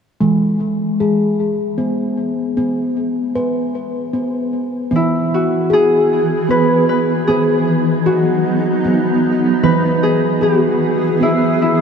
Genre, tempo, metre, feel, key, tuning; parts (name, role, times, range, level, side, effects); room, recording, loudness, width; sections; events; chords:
world meditative, meditative tuned percussion; 76 BPM; 3/4; swing 55% on 16ths; E major; A4 = 440 Hz
steel tongue drum; arpeggios; 0.2-11.8 s; E3 to B4; -17 LUFS; equal; ping-pong delay
granular cloud pad; sustained chords; 5.6-11.8 s; E3 to G#4; -17 LUFS; right 1 dB; built-in reverb
Celtic harp; melody; 5.0-11.8 s; E4 to B4; -17 LUFS; left 2 dB; ping-pong delay
wet huge ambient reverb, RT60 8.2 s; dreamy mix soaked in reverb; -14 LUFS; side -6 dB against mid
0.2-4.9 A section; 4.9-11.8 B section
0.2 E; 2.6 N.C.; 4.9 E; 7.3 B; 9.6 E